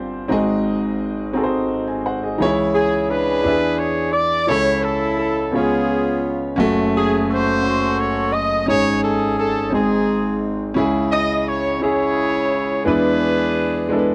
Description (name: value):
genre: slow gospel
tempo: 57 BPM (dotted quarters)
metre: 6/8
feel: straight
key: unclear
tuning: A4 = 440 Hz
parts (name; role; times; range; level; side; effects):
- warm concert grand piano; accompaniment; 0.0-14.1 s; F#1 to B#5; -21 LUFS; equal; none
- warm horn section; melody; 2.7-14.1 s; B3 to D#5; -22 LUFS; equal; none
room: studio reverb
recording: dry, close 1970s-style studio recording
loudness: -19 LUFS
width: mono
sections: 0.0-2.4 A section; 2.4-14.1 B section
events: grand piano fill 13.9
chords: 0.3 Ab7; 2.4 C#m; 3.4 E7; 4.5 A/C#; 5.5 C#7; 6.6 F#m; 8.7 G#sus4; 9.7 G#; 10.8 C#m; 12.9 E7